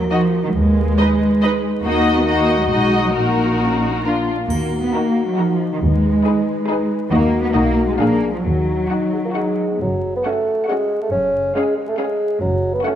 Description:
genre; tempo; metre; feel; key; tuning
cinematic, playful, whimsical film cue; 137 BPM; 3/4; straight; Eb minor, F# minor from 9.8 s; A4 = 440 Hz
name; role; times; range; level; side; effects
mellow French horn section; sustained chords; 0.0-9.8 s; Bb3 to Cb5; -23 LUFS; left 3 dB; none
muted studio cello section; bass; 0.0-12.8 s; F#2 to Cb4; -19 LUFS; right 1 dB; none
muted studio violin section; melody; 0.1-13.0 s; Bb4 to Gb5; -26 LUFS; left 3 dB; none
muted studio violin section; second line; 0.1-13.0 s; F4 to Cb5; -26 LUFS; left 2 dB; none
muted studio viola section; accompaniment; 0.1-13.0 s; C#4 to Eb4; -26 LUFS; right 1 dB; none
muted studio double bass section; bass; 0.5-12.8 s; F#1 to Eb2; -22 LUFS; right 1 dB; none
triangle; percussion; 4.5-5.3 s; none; -40 LUFS; left 2 dB; none
dark bassoon; accompaniment; 9.1-13.0 s; F#3 to C#4; -19 LUFS; equal; none
room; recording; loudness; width
moderate scoring stage reverb, RT60 2.1 s; vinyl crackle; -16 LUFS; side -10 dB against mid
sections
0.0-9.8 A section; 9.8-13.0 B section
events
none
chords
0.0 Ebm; 0.5 Abm/Eb; 1.8 Ebm; 2.7 B; 3.1 Ebm/Bb; 4.0 Bb; 4.5 Ebm; 5.8 Abm/Eb; 7.1 Ebm; 7.6 B; 8.0 Bb7; 8.4 Ebm; 9.8 F#m; 11.1 C#/F#; 12.4 F#m

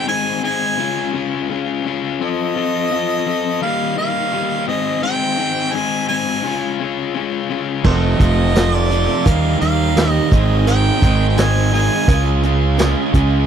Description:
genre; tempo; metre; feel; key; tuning
classic rock; 85 BPM; 4/4; straight; unclear; A4 = 439 Hz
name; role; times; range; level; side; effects
warm harmonica; melody; 0.0-12.4 s; Eb5 to Ab5; -22 LUFS; right 3 dB; tape echo
overdriven electric guitar; riff; 0.0-13.5 s; Ab2 to A4; -20 LUFS; left 8 dB; none
crunchy overdriven guitar; riff; 7.8-13.5 s; F2 to Ab4; -21 LUFS; right 20 dB; none
fuzz fingered electric bass; bass; 7.8-13.5 s; F1 to Eb2; -17 LUFS; right 1 dB; overdrive
vintage drum kit; drums; 7.8-13.3 s; crash cymbal, hi-hat, kick drum, snare drum, tambourine; -16 LUFS; right 1 dB; none
cowbell; percussion; 7.8-12.9 s; none; -28 LUFS; right 19 dB; none
room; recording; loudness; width
little or no reverb; dry, close 1970s-style studio recording; -15 LUFS; side -8 dB against mid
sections
0.0-13.5 A section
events
none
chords
0.0 Ab; 0.8 Db; 2.2 F; 3.6 Ebadd9; 4.7 Ab; 6.4 Db; 7.8 F; 9.3 Ebadd9; 10.3 Ab; 12.1 Db

